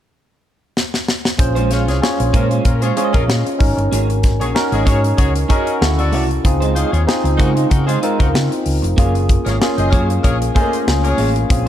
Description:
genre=polished 1980s jazz-funk pop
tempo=95 BPM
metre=4/4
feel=swing 54% on 16ths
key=Bb minor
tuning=A4 = 441 Hz
part: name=modern studio drum kit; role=drums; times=0.8-11.7 s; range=hi-hat, kick drum, snare drum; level=-18 LUFS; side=equal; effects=none
part: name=barky tine electric piano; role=accompaniment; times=1.4-11.7 s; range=C#3 to Eb5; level=-19 LUFS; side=left 1 dB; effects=overdrive, analog chorus
part: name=electric guitar at the edge of break-up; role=riff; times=1.4-11.5 s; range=Ab3 to Db5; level=-24 LUFS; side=right 5 dB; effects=lush chorus
part: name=hollow-body short-scale fingered electric bass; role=bass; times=1.4-11.7 s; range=F1 to Db3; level=-18 LUFS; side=equal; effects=none
part: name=warm horn section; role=second line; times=1.7-11.3 s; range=Db4 to F5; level=-25 LUFS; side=left 3 dB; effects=none
room=light reverb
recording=dark, warm production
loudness=-14 LUFS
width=side -11 dB against mid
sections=0.0-1.4 A section; 1.4-11.7 B section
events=drum fill 0.8-1.4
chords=0.0 N.C.; 1.4 Bbm9; 3.6 Ab7sus4; 5.8 Dmaj9; 6.4 Dbmaj9; 9.0 Gbmaj9

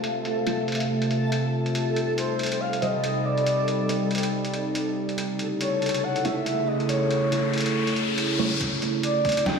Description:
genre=deep dubstep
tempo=140 BPM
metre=4/4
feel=swing 58% on 16ths, half-time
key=unclear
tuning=A4 = 440 Hz
part: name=overtone-sweeping drone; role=sustained chords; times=0.0-9.6 s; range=C3 to F4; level=-26 LUFS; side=equal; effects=chorus, built-in reverb
part: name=trip hop sampler-style drum kit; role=drums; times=0.0-9.6 s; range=hi-hat, snare drum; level=-32 LUFS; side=equal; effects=low-pass filter on hats, low-pass filter on snare
part: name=backwards swelling texture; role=texture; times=0.0-8.6 s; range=A4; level=-34 LUFS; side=right 4 dB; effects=built-in reverb
part: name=filtered dub chord stab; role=stabs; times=0.5-8.5 s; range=G3 to C#5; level=-33 LUFS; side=right 3 dB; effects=none
part: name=breathy flute-like synth lead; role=melody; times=2.2-9.6 s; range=C5 to G5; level=-27 LUFS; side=left 1 dB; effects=wide subtle chorus, dub echo
part: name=riser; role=sound effects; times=6.3-9.6 s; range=none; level=-31 LUFS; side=left 4 dB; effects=none
part: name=electronic kick drum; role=drums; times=8.6-9.3 s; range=none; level=-32 LUFS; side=equal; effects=high-pass filter on kick
room=moderate huge ambient reverb, RT60 4.8 s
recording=played on a big sound system in a bare room, stone room reverb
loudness=-22 LUFS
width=side -5 dB against mid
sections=0.0-8.6 A section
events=riser 6.3-8.6, 8.6-9.6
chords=0.0 F; 1.8 Cm; 5.2 A; 8.6 Dm7

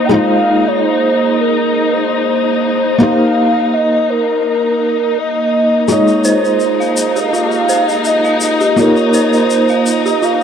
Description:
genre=trip hop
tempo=83 BPM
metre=4/4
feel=swing 54% on 16ths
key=F minor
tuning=A4 = 442 Hz
part: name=pure breathy sine lead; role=melody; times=0.0-10.4 s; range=Bb4 to G5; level=-15 LUFS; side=right 1 dB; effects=wide subtle chorus, cassette tape, dub echo
part: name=felt-muted upright piano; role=accompaniment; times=0.0-10.4 s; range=Ab3 to Eb5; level=-16 LUFS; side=left 1 dB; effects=tremolo, tape echo
part: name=dark chamber string section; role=sustained chords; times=0.0-10.4 s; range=Eb4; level=-18 LUFS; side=left 3 dB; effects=low-pass filter
part: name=bowed-like drone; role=texture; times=0.0-10.4 s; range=Bb3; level=-21 LUFS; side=right 3 dB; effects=built-in reverb
part: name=dark detuned synth bell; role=arpeggios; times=5.9-10.4 s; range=F4 to F5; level=-18 LUFS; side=right 2 dB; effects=chorus, phaser, vintage 12-bit sampler grit, tape echo
part: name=tube shaker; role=percussion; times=5.9-10.4 s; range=none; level=-24 LUFS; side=left 3 dB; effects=none
room=light reverb, small room ambience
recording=none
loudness=-11 LUFS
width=side -8 dB against mid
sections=0.0-10.4 A section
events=none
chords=0.1 Fm7; 3.0 Cm7; 5.9 Fm7; 8.8 Cm7

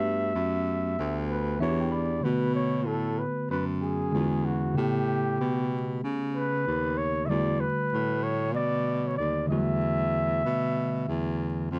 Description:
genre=hip hop, jazz-hop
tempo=95 BPM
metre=4/4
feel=swing 64% on 16ths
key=E dorian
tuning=A4 = 440 Hz
part: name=breathy flugelhorn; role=melody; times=0.0-11.7 s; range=F#4 to E5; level=-33 LUFS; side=equal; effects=none
part: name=mellow tine electric piano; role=accompaniment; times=0.0-11.8 s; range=C#3 to B5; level=-33 LUFS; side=equal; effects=none
part: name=breathy baritone saxophone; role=bass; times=0.0-11.8 s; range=D2 to C#3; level=-32 LUFS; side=equal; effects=none
room=light reverb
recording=dark, warm production, vinyl crackle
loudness=-28 LUFS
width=mono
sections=0.0-2.2 A section; 2.2-11.8 B section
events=tine electric piano fill 1.3-2.2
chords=0.0 Gmaj9; 1.6 Em7; 2.2 Bm7; 4.1 E13; 4.8 A9; 7.3 Em11

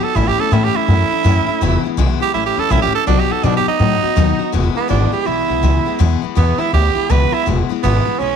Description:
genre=rockabilly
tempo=164 BPM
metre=4/4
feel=swing 63% on 8ths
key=E major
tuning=A4 = 440 Hz
part: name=raspy tenor saxophone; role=melody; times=0.0-8.4 s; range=B3 to B4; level=-18 LUFS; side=right 11 dB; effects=slapback echo
part: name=picked steel-string acoustic guitar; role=accompaniment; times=0.0-8.4 s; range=E2 to F#4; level=-20 LUFS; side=left 13 dB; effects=none
part: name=upright bass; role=bass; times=0.0-8.3 s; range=E1 to B2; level=-16 LUFS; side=equal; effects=none
room=light reverb, small room ambience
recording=1960s-style stereo with parts hard left and right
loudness=-13 LUFS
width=side -7 dB against mid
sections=0.0-4.5 A section; 4.5-8.4 B section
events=tenor saxophone solo 0.0-4.5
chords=0.2 A; 1.6 E; 2.3 A; 3.1 B; 4.5 E

